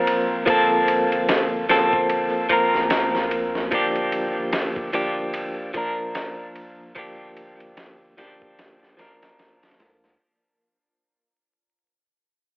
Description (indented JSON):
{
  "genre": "trip hop",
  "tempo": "74 BPM",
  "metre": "4/4",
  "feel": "swing 59% on 16ths",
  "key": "unclear",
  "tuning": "A4 = 439 Hz",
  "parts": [
    { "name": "clean electric guitar", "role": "accompaniment", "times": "0.0-10.2 s", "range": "F3 to Bb4", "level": "-20 LUFS", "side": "equal", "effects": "harmonic tremolo, tape echo" },
    { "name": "soft dub sub bass", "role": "bass", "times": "0.0-10.2 s", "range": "D1 to D2", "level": "-46 LUFS", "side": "equal", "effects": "none" },
    { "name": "dusty soul sampler-style drum kit", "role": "drums", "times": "0.1-10.2 s", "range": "kick drum, ride cymbal, snare drum", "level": "-27 LUFS", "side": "equal", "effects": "overdrive" }
  ],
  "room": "light reverb, digital ambience",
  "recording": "worn, warbling old tape, cassette tape, vinyl crackle, warbly pitch drift, telephone sound",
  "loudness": "-19 LUFS",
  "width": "side -36 dB against mid",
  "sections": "0.0-10.2 A section",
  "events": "fade-out 0.0-10.2",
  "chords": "0.0 Gm11; 3.7 Bb6/G"
}